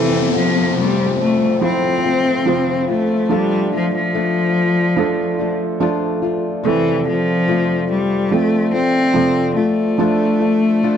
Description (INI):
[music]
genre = pop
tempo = 72 BPM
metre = 4/4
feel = straight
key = F major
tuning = A4 = 440 Hz
[part]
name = rich cello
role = melody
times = 0.0-11.0 s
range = E3 to C4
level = -17 LUFS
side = left 2 dB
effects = slapback echo
[part]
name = felt-muted upright piano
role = accompaniment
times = 0.0-11.0 s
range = C3 to A4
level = -21 LUFS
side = right 7 dB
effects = none
[part]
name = dark French horn section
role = sustained chords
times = 0.0-11.0 s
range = F3 to D5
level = -26 LUFS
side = left 2 dB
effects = none
[part]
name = fingerpicked old ladder-braced acoustic guitar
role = arpeggios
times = 0.0-11.0 s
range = F2 to F4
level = -23 LUFS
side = left 11 dB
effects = none
[part]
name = downlifter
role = sound effects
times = 0.0-6.6 s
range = none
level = -25 LUFS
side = left 3 dB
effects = none
[sound]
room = small room reverb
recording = dry, close 1970s-style studio recording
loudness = -15 LUFS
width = side -8 dB against mid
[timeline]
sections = 0.0-11.0 A section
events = none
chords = 0.0 F; 3.3 Dm/F; 6.6 F; 10.0 Dm/F